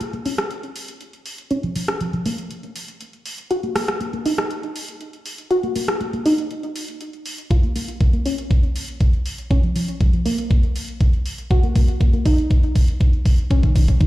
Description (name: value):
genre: progressive house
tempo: 120 BPM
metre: 4/4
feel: straight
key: Bb minor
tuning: A4 = 438 Hz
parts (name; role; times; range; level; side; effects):
- soft round pluck; arpeggios; 0.0-14.1 s; Eb3 to Gb4; -23 LUFS; equal; wide subtle chorus, cassette tape, sidechain pumping, digital delay
- pop drum kit; drums; 0.0-14.1 s; hi-hat, rim click; -28 LUFS; equal; overdrive, sidechain pumping on hats
- electronic kick drum; drums; 7.5-14.1 s; none; -15 LUFS; equal; overdrive
room: light reverb, digital ambience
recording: played on a big sound system in a bare room, large studio reverb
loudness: -18 LUFS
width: side -16 dB against mid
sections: 0.0-14.1 A section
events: build-up 0.0-14.1; filter sweep on synth pluck 0.0-14.1; drum fill 7.5-14.1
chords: none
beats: 0.01 0.51 1.01 | 1.51 2.01 2.51 3.01 | 3.51 4.01 4.51 5.01 | 5.51 6.01 6.51 7.01 | 7.51 8.01 8.51 9.01 | 9.51 10.01 10.51 11.01 | 11.51 12.01 12.51 13.01 | 13.51 14.01